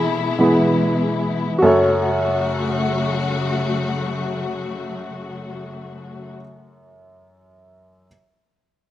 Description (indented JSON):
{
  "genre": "pop",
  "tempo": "free time",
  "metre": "none",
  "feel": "none",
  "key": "F# minor",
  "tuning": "A4 = 440 Hz",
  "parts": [
    { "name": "clear upright piano", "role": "accompaniment", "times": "0.0-8.1 s", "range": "F#2 to G#5", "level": "-19 LUFS", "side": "right 1 dB", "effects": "none" },
    { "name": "warm studio string section", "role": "sustained chords", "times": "0.0-6.3 s", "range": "B2 to F#4", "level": "-23 LUFS", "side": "left 3 dB", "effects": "none" }
  ],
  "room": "light reverb",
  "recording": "rough home demo mix",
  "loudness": "-17 LUFS",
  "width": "side -13 dB against mid",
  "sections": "0.0-1.6 A section; 1.6-5.6 B section",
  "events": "upright piano solo 0.0-1.6",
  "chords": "0.0 E; 1.6 F#m"
}